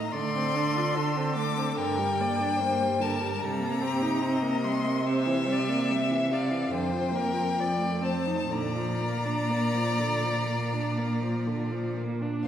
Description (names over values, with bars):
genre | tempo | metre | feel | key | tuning
classical, slow romantic movement for string quartet | 59-76 BPM | 4/4 | rubato | Bb major | A4 = 444 Hz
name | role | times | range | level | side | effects
rich violin | melody | 0.0-12.5 s | E5 to D6 | -32 LUFS | left 4 dB | none
rich violin | second line | 0.0-12.5 s | G4 to E5 | -33 LUFS | left 2 dB | none
warm viola | accompaniment | 0.0-12.4 s | C3 to F4 | -31 LUFS | right 1 dB | none
clear cello | bass | 0.0-12.5 s | F2 to D3 | -30 LUFS | right 1 dB | none
room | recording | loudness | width
wet concert hall reverb, RT60 2.3 s | heard from further back in the room | -25 LUFS | side -10 dB against mid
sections
0.0-12.5 A section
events
none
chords
0.1 Dm7; 1.8 Gm; 3.4 Cm7; 5.1 C7; 6.7 Bb/F; 7.6 F7; 8.5 Bb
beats
0.14 0.95 | 1.77 2.60 3.42 4.23 | 5.09 5.92 6.74 7.59 | 8.53 9.52 10.50 11.49 | 12.45